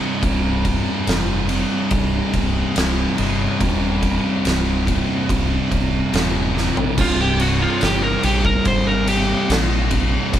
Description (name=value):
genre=stoner and doom metal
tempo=71 BPM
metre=4/4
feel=straight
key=unclear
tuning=A4 = 440 Hz
part: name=thick fuzz guitar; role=riff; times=0.0-10.4 s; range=C2 to C3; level=-24 LUFS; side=left 5 dB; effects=distortion
part: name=thick fuzz guitar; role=riff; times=0.0-10.4 s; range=C2 to C3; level=-23 LUFS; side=right 5 dB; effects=distortion
part: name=modern bright fingered electric bass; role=bass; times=0.2-10.4 s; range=C1 to Bb1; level=-23 LUFS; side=equal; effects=overdrive
part: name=oversized low-tuned drum kit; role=drums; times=0.2-10.4 s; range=crash cymbal, kick drum, ride cymbal, snare drum, toms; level=-22 LUFS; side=equal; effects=none
part: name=fuzz lead guitar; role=melody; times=7.0-9.5 s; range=F4 to C5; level=-21 LUFS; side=equal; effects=distortion
room=moderate small room reverb, RT60 0.5 s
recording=band playing live in one room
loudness=-16 LUFS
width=side -11 dB against mid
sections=0.0-7.0 A section; 7.0-10.4 B section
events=drum fill 6.5-7.0; lead electric guitar solo 7.0-10.4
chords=0.0 Cm; 7.0 C5